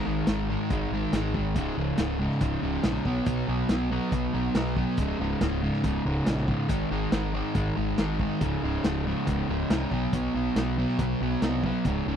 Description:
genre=classic rock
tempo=140 BPM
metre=4/4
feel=straight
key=unclear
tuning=A4 = 439 Hz
part: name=overdriven semi-hollow guitar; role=riff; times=0.0-12.2 s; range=Db2 to Cb4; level=-27 LUFS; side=equal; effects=none
part: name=growling picked electric bass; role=bass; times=0.1-12.2 s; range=Db1 to C2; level=-31 LUFS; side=equal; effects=overdrive
part: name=vintage drum kit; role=drums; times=0.3-12.0 s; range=hi-hat, kick drum, snare drum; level=-29 LUFS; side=equal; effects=none
room=little or no reverb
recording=dry, close 1970s-style studio recording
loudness=-24 LUFS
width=side -8 dB against mid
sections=0.0-12.2 A section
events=none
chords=0.0 Ab5; 1.6 Db5; 3.1 Cb5; 5.0 Db5; 6.7 Ab5; 8.4 Db5; 9.9 Cb5

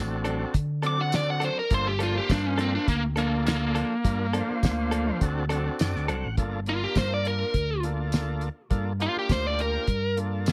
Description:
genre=straight-eighth soul blues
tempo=103 BPM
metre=4/4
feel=straight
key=G minor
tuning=A4 = 439 Hz
part: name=tonewheel organ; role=accompaniment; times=0.0-10.5 s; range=Bb3 to F#5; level=-36 LUFS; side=equal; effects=slow rotary speaker, overdrive
part: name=fingered electric bass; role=bass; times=0.0-10.5 s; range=G1 to D3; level=-31 LUFS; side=equal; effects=none
part: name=direct-recorded clean electric guitar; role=stabs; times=0.2-6.3 s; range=F3 to A4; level=-35 LUFS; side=equal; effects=none
part: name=cloth-damped thuddy drum kit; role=drums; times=0.2-10.5 s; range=hi-hat, kick drum, snare drum, tambourine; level=-29 LUFS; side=equal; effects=none
part: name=biting lead guitar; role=melody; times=0.9-10.2 s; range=Bb3 to D6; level=-30 LUFS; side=equal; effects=overdrive
room=light reverb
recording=none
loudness=-26 LUFS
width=mono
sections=0.0-6.4 A section; 6.4-10.5 B section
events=lead electric guitar solo 0.0-6.4; tonewheel organ fill 5.5-6.4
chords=0.0 D7; 1.7 Gm9; 5.2 D7; 6.4 Gm9

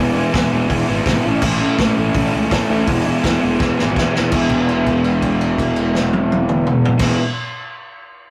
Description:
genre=garage rock duo or trio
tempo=166 BPM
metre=4/4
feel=straight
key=E major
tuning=A4 = 441 Hz
part: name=raw garage guitar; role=riff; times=0.0-7.2 s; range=A2 to E4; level=-20 LUFS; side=equal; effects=overdrive
part: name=fuzz fingered electric bass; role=bass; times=0.0-7.2 s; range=E1 to A2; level=-24 LUFS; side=equal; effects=overdrive
part: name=vintage drum kit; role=drums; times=0.3-7.1 s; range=crash cymbal, hi-hat, kick drum, snare drum, toms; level=-22 LUFS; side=equal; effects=none
room=moderate small room reverb, RT60 0.5 s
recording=rough rehearsal-room recording, warm saturation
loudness=-17 LUFS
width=mono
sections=0.0-4.3 A section; 4.3-7.2 B section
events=drum fill 3.6-4.3; held note 4.3-7.0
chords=0.0 E; 1.3 A; 2.9 E

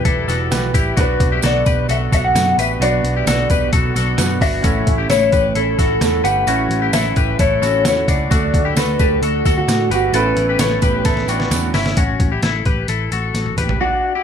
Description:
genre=jangly indie pop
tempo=131 BPM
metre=4/4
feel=straight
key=unclear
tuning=A4 = 441 Hz
part: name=mellow electric guitar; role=melody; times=0.0-14.2 s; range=F#4 to F#5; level=-19 LUFS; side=left 1 dB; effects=lush chorus, plate reverb
part: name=bright upright piano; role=accompaniment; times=0.0-12.0 s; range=C#4 to B5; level=-27 LUFS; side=right 6 dB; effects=none
part: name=electric guitar at the edge of break-up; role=accompaniment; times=0.0-12.0 s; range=E2 to G4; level=-25 LUFS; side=right 7 dB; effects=none
part: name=twelve-string electric guitar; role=arpeggios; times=0.0-14.2 s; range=C#4 to C#5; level=-22 LUFS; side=left 7 dB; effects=none
part: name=vintage muted picked electric bass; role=bass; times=0.1-13.8 s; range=E1 to A2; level=-21 LUFS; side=equal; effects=none
part: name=trip hop sampler-style drum kit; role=drums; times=0.1-13.8 s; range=hi-hat, kick drum, snare drum, toms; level=-19 LUFS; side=equal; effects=none
part: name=tambourine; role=percussion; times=0.3-11.9 s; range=none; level=-31 LUFS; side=right 7 dB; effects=none
room=moderate studio reverb, RT60 0.6 s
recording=lossy compression artefacts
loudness=-14 LUFS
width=side -8 dB against mid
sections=0.0-12.0 A section; 12.0-13.8 B section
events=upright piano fill 10.6-12.0; drum fill 11.1-12.0, 13.3-13.8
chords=0.0 Em; 1.0 Bm; 4.6 A; 8.3 D; 10.1 Aadd9

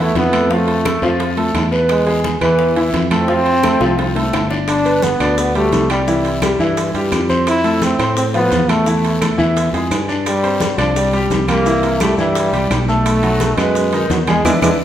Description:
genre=latin, salsa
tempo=172 BPM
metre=4/4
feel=straight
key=unclear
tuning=A4 = 440 Hz
part: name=bright trombone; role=melody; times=0.0-14.7 s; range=E3 to E4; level=-18 LUFS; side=equal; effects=none
part: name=bright concert grand piano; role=accompaniment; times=0.0-14.7 s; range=D#3 to D5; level=-18 LUFS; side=equal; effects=none
part: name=fingered electric bass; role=bass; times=0.0-14.8 s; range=G1 to A2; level=-20 LUFS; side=equal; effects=none
part: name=bongos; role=percussion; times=0.2-14.7 s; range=none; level=-27 LUFS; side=left 3 dB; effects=none
part: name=congas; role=percussion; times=0.2-14.7 s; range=none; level=-26 LUFS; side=equal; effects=none
part: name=guiro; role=percussion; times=0.2-14.7 s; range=none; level=-30 LUFS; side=left 3 dB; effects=none
part: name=timbales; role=percussion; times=0.2-14.7 s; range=none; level=-27 LUFS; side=right 4 dB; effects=none
part: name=claves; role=percussion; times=0.3-14.7 s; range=none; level=-31 LUFS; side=right 1 dB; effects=none
part: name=maracas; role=percussion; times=4.7-14.7 s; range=none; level=-33 LUFS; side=right 3 dB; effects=none
room=wet large studio reverb, RT60 1.3 s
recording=band playing live in one room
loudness=-13 LUFS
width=side -11 dB against mid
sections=0.0-14.8 A section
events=drum fill 3.6-4.7; band accent 14.5-14.8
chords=0.0 Esus4; 1.9 E; 3.3 F; 4.7 G; 6.1 C; 7.5 Fmaj7; 8.9 Esus4; 9.6 E; 10.3 Gsus4; 11.7 C7; 13.1 B7

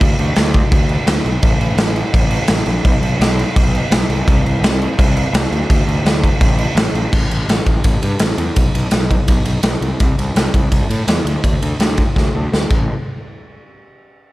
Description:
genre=garage rock duo or trio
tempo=168 BPM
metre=4/4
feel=straight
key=unclear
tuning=A4 = 445 Hz
part: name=fuzz picked electric bass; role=bass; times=0.0-12.9 s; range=A1 to A2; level=-18 LUFS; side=equal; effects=overdrive
part: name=raw garage drum kit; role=drums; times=0.0-12.8 s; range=crash cymbal, kick drum, ride cymbal, snare drum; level=-15 LUFS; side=equal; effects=none
room=little or no reverb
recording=none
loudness=-13 LUFS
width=side -18 dB against mid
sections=0.0-7.1 A section; 7.1-12.9 B section; 12.9-14.3 C section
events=drum fill 12.2-12.9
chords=none

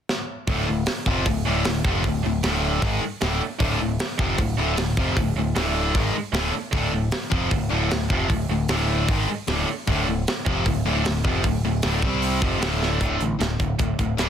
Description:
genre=hard rock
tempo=153 BPM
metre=4/4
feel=straight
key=D minor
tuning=A4 = 440 Hz
part: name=tight metal drum kit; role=drums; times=0.1-14.3 s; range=hi-hat, kick drum, snare drum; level=-26 LUFS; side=equal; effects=soft clipping on kick
part: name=distorted electric guitar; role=riff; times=0.5-14.3 s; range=D2 to C4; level=-26 LUFS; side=left 12 dB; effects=overdrive
part: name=tight distorted guitar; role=riff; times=0.5-14.3 s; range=D2 to C4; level=-27 LUFS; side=right 10 dB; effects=distortion
part: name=growling picked electric bass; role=bass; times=0.5-14.3 s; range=D1 to C2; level=-26 LUFS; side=equal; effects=overdrive
room=light reverb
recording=dense, heavily limited modern master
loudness=-20 LUFS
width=side -9 dB against mid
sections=0.5-13.0 A section; 13.0-14.3 B section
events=drum fill 0.1-0.5, 12.8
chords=0.5 Dm; 12.0 C5; 12.4 Dm; 13.0 D5

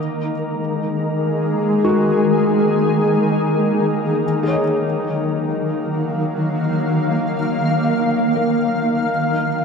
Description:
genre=ambient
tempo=free time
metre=none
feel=none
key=Eb minor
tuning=A4 = 440 Hz
part: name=shimmering ambient pad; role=sustained chords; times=0.0-9.6 s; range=Eb3 to F5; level=-17 LUFS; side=left 1 dB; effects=chorus, built-in reverb
part: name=felt-muted upright piano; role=arpeggios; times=0.0-9.6 s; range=Gb4 to Eb5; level=-26 LUFS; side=left 1 dB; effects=ping-pong delay
part: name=organ-like drone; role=drone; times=0.0-9.6 s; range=Eb3 to Bb3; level=-26 LUFS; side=right 1 dB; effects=ensemble chorus, built-in reverb
room=wet cathedral reverb, RT60 4.9 s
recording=in a vast, echoing space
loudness=-16 LUFS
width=side -5 dB against mid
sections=0.0-9.6 A section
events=fade-out on felt piano 0.0-9.6; fade-out on synth drone 0.0-9.6; filter sweep on ambient pad 0.0-9.6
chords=0.0 Ab5; 4.2 Ebmadd9; 9.1 N.C.

